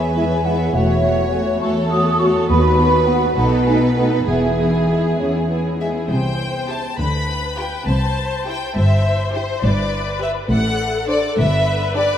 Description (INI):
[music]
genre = cinematic, playful, whimsical film cue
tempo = 68 BPM (dotted quarters)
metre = 6/8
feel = straight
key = E major, C major from 6.1 s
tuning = A4 = 441 Hz
[part]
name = rich studio violin section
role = melody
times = 0.0-12.2 s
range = G#4 to B5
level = -24 LUFS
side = left 2 dB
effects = none
[part]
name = mellow hollow large flute ensemble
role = second line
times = 0.0-5.2 s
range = E5 to D#6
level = -22 LUFS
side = right 1 dB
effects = none
[part]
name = warm studio violin section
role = second line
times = 0.0-12.2 s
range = D4 to C#5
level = -25 LUFS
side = right 2 dB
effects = none
[part]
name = rich studio viola section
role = accompaniment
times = 0.0-12.2 s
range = A3 to C5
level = -23 LUFS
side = left 1 dB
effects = none
[part]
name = warm studio cello section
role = bass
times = 0.0-12.1 s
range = D#2 to D3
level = -22 LUFS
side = equal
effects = none
[part]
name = mellow French horn section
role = sustained chords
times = 0.2-5.9 s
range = G#3 to F#4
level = -26 LUFS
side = equal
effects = none
[part]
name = warm studio double bass section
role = bass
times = 0.7-12.1 s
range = E1 to D#2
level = -21 LUFS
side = equal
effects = none
[sound]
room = wet cathedral reverb, RT60 5.5 s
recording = in a vast, echoing space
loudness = -16 LUFS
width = side -9 dB against mid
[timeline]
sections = 0.0-6.1 A section; 6.1-12.2 B section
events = none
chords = 0.0 E; 0.7 F#m7/E; 2.5 B/D#; 3.4 B7; 4.3 E; 6.1 C; 7.0 G7/D; 7.9 C; 9.6 G; 10.5 D7/A; 11.4 G